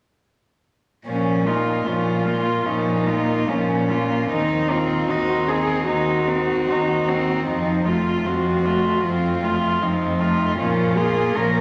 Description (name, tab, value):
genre	classical, lyrical piece for cello ensemble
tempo	76 BPM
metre	4/4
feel	rubato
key	Bb minor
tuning	A4 = 440 Hz
part	dark cello	melody	1.1-11.6 s	Db4 to Bb4	-26 LUFS	equal	none
part	clear cello	second line	1.1-11.6 s	C4 to F4	-28 LUFS	equal	none
part	warm cello	accompaniment	1.1-11.6 s	F3 to Eb4	-26 LUFS	equal	none
part	dark cello	bass	1.1-11.6 s	Eb2 to Bb2	-27 LUFS	equal	none
room	wet concert hall reverb, RT60 2.4 s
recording	none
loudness	-21 LUFS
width	mono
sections	1.1-11.6 A section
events	none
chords	1.1 Bbm; 4.3 Cdim/Eb; 7.5 F; 10.6 Bbm